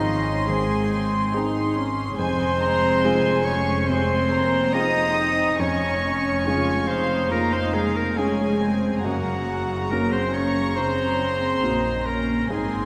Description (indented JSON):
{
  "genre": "cinematic, emotional film score for orchestra",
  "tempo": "70 BPM",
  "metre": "4/4",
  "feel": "rubato",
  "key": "unclear",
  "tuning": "A4 = 440 Hz",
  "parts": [
    { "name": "warm symphonic violin section", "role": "melody", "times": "0.0-12.9 s", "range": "F5 to C6", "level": "-33 LUFS", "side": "equal", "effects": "none" },
    { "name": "clear clarinet", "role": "second line", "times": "0.0-12.9 s", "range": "Eb4 to Eb5", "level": "-28 LUFS", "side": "equal", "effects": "none" },
    { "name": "warm symphonic violin section", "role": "second line", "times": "0.0-12.9 s", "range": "Eb5 to Eb6", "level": "-33 LUFS", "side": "equal", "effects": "none" },
    { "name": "felt-muted upright piano", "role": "accompaniment", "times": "0.0-12.9 s", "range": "F2 to Ab4", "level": "-31 LUFS", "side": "equal", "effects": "none" },
    { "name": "rich symphonic viola section", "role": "accompaniment", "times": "0.0-12.9 s", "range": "Db3 to F4", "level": "-32 LUFS", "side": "equal", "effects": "none" },
    { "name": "warm chamber cello section", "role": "bass", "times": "0.0-12.9 s", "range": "Eb3 to Eb4", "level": "-30 LUFS", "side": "equal", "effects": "none" },
    { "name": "warm symphonic double bass section", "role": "bass", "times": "0.0-12.9 s", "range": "F1 to Bb1", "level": "-32 LUFS", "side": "equal", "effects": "none" }
  ],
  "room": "wet cathedral reverb, RT60 5.0 s",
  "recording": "recorded in a church or concert hall",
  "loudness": "-22 LUFS",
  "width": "mono",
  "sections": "0.0-12.9 A section",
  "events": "none",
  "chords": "0.0 Ab; 2.2 Fm; 9.0 Gb"
}